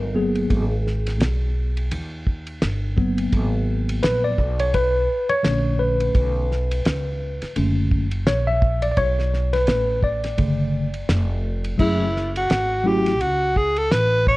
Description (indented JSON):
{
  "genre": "hip hop, jazz-hop",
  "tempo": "85 BPM",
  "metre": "4/4",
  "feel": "swing 58% on 16ths",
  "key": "unclear",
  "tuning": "A4 = 442 Hz",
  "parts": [
    { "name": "mellow tine electric piano", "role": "accompaniment", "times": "0.0-13.1 s", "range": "C#3 to E5", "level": "-22 LUFS", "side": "left 1 dB", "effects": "medium stereo tremolo" },
    { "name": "upright bass", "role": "bass", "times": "0.0-14.4 s", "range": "E#1 to D#2", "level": "-23 LUFS", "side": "equal", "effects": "none" },
    { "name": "cloth-damped thuddy drum kit", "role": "drums", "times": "0.4-14.4 s", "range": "crash cymbal, hi-hat, kick drum, ride cymbal, snare drum", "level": "-24 LUFS", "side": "equal", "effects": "none" },
    { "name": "breathy alto saxophone", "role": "melody", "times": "11.8-14.4 s", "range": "E4 to C#5", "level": "-20 LUFS", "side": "equal", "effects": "none" }
  ],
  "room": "light reverb, small room ambience",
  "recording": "worn, warbling old tape, cassette tape, warbly pitch drift",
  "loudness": "-19 LUFS",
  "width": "side -20 dB against mid",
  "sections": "0.0-11.8 A section; 11.8-14.4 A section",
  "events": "tine electric piano solo 0.0-11.8; alto saxophone solo 11.8-14.4",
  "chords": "0.0 G#m9; 4.4 Bm9; 11.8 F#m9"
}